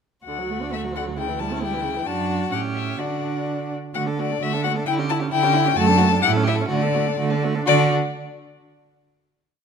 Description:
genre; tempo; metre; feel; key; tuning
quick classical-period movement for string quartet; 122-136 BPM; 2/4; rubato; D major; A4 = 438 Hz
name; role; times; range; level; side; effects
warm violin; melody; 0.2-7.9 s; D5 to A5; -24 LUFS; left 10 dB; none
rich violin; second line; 0.2-7.9 s; E4 to A4; -28 LUFS; left 2 dB; none
rich viola; accompaniment; 0.3-7.9 s; C#3 to E4; -27 LUFS; right 4 dB; none
rich cello; bass; 0.3-7.9 s; D2 to D3; -24 LUFS; right 6 dB; none
room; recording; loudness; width
moderate recital hall reverb, RT60 1.5 s; none; -19 LUFS; side -6 dB against mid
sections
0.3-4.0 A section; 4.0-7.7 A section; 7.7-8.6 final chord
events
none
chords
0.3 D; 1.2 C#dim/D; 2.1 D/F#; 2.5 A7; 3.0 D; 4.9 C#dim/D; 5.8 D/F#; 6.2 A7; 6.7 D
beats
| 0.26 0.72 | 1.17 1.62 | 2.07 2.52 | 2.99 3.48 | 3.95 4.42 | 4.87 5.33 | 5.77 6.22 | 6.70 7.19 | 7.67

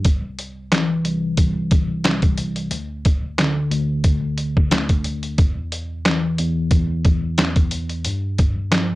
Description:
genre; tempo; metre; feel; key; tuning
hip hop, boom-bap hip-hop; 90 BPM; 4/4; swing 55% on 16ths; C major; A4 = 440 Hz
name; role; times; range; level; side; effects
mellow tine electric piano; accompaniment; 0.0-9.0 s; C2 to F3; -22 LUFS; left 1 dB; slow stereo tremolo, high-pass filter, low-pass filter
trip hop sampler-style drum kit; drums; 0.0-8.9 s; handclaps, hi-hat, kick drum, snare drum; -18 LUFS; equal; vintage 12-bit sampler grit
room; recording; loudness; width
little or no reverb; dry, gritty hardware recording; -18 LUFS; side -19 dB against mid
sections
0.0-9.0 A section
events
none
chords
0.0 C; 2.7 N.C.; 8.0 Fsus2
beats
| 0.05 0.72 1.38 2.05 | 2.72 3.38 4.05 4.72 | 5.38 6.05 6.72 7.38 | 8.05 8.72

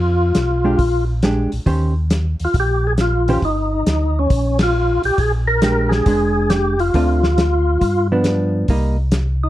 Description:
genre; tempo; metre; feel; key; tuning
soul jazz organ trio; 137 BPM; 4/4; swing 66% on 8ths; Bb mixolydian; A4 = 440 Hz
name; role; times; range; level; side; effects
percussive tonewheel organ; melody; 0.0-9.5 s; Db4 to Bb4; -18 LUFS; left 1 dB; slow rotary speaker, overdrive, chorus vibrato, plate reverb
mellow tonewheel organ; bass; 0.0-9.5 s; F1 to G2; -19 LUFS; equal; overdrive, chorus vibrato, slow rotary speaker
warm soul drum kit; drums; 0.3-9.3 s; hi-hat, kick drum, ride cymbal, snare drum; -20 LUFS; equal; none
hollow-body jazz guitar; accompaniment; 0.6-9.0 s; D3 to C5; -20 LUFS; right 2 dB; none
room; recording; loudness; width
light reverb; dark, warm production; -15 LUFS; side -14 dB against mid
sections
0.0-9.5 A section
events
band accent 4.5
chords
0.0 Fm; 0.8 Bb6; 1.7 Eb9; 5.2 Bb6; 6.9 Dm7; 7.8 G7; 8.7 Cm7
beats
0.35 0.79 1.23 | 1.67 2.11 2.55 2.99 | 3.43 3.87 4.30 4.74 | 5.18 5.62 6.06 6.50 | 6.94 7.38 7.82 8.26 | 8.70 9.13

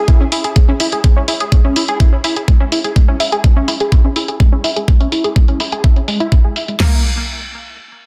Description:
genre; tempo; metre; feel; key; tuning
progressive house; 125 BPM; 4/4; straight; unclear; A4 = 441 Hz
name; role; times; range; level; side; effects
tight sequenced synth; arpeggios; 0.0-7.0 s; G#3 to E5; -21 LUFS; equal; chorus, phaser, sidechain pumping, digital delay
electronic hi-hat; drums; 0.1-6.8 s; none; -22 LUFS; equal; low-pass filter on hats, small room ambience, low-pass filter on snare
pop drum kit; drums; 0.1-6.9 s; crash cymbal, kick drum, snare drum, toms; -13 LUFS; equal; small room ambience
room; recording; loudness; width
light reverb; dense, heavily limited modern master; -14 LUFS; mono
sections
0.0-6.8 A section; 6.8-8.1 B section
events
filter sweep on synth arpeggio sound 0.0-6.8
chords
none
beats
0.08 0.56 | 1.04 1.52 2.00 2.48 | 2.96 3.44 3.92 4.40 | 4.88 5.36 5.84 6.32 | 6.80

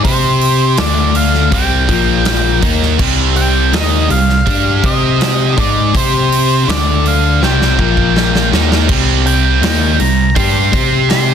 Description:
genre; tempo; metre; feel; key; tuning
quiet-loud alternative rock; 82 BPM; 4/4; straight; C minor; A4 = 440 Hz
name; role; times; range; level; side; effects
octave-fuzz lead guitar; melody; 0.0-11.3 s; C5 to C6; -18 LUFS; equal; distortion, plate reverb, analog delay
high-gain distorted guitar; riff; 0.0-11.3 s; Bb2 to C5; -17 LUFS; right 14 dB; distortion
overdriven semi-hollow guitar; riff; 0.0-11.3 s; Bb2 to C5; -18 LUFS; left 13 dB; none
overdriven picked electric bass; bass; 0.0-11.3 s; Bb1 to C3; -15 LUFS; equal; none
big rock drum kit; drums; 0.0-11.3 s; crash cymbal, hi-hat, kick drum, snare drum; -17 LUFS; equal; soft clipping on snare
room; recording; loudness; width
light reverb; dense, heavily limited modern master; -10 LUFS; side -8 dB against mid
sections
0.0-11.3 A section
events
drum fill 7.4-8.9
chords
0.0 C5; 0.8 D5; 1.5 C5; 1.9 Bb5; 2.6 Cm; 6.7 D5; 7.4 C5; 7.8 Bb5; 8.5 Cm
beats
| 0.05 0.79 1.52 2.26 | 3.00 3.73 4.47 5.21 | 5.94 6.68 7.42 8.15 | 8.89 9.63 10.37 11.10

